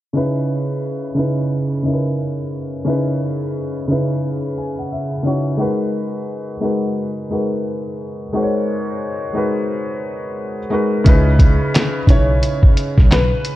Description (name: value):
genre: lo-fi hip hop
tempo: 88 BPM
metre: 4/4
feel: swing 60% on 16ths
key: C# minor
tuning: A4 = 444 Hz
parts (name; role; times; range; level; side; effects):
- felt-muted upright piano; accompaniment; 0.1-13.6 s; C#3 to G#5; -19 LUFS; equal; cassette tape
- upright bass; bass; 11.1-13.3 s; B1 to C#2; -17 LUFS; equal; none
- lo-fi sampler-style drum kit; drums; 11.1-13.6 s; handclaps, hi-hat, kick drum, snare drum; -12 LUFS; equal; none
- warm upright piano; melody; 12.1-13.6 s; B4 to C#5; -22 LUFS; equal; none
room: light reverb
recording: dark, warm production, low-pass filter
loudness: -16 LUFS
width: side -15 dB against mid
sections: 0.1-11.1 A section; 11.1-13.6 B section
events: filter sweep 0.1-11.1; felt piano fill 4.2-5.6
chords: 0.1 C#m9; 5.6 G#m9; 11.1 C#m9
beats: | 0.15 0.83 1.51 2.19 | 2.88 3.56 4.24 4.92 | 5.60 6.29 6.97 7.65 | 8.33 9.01 9.70 10.38 | 11.06 11.74 12.42 13.10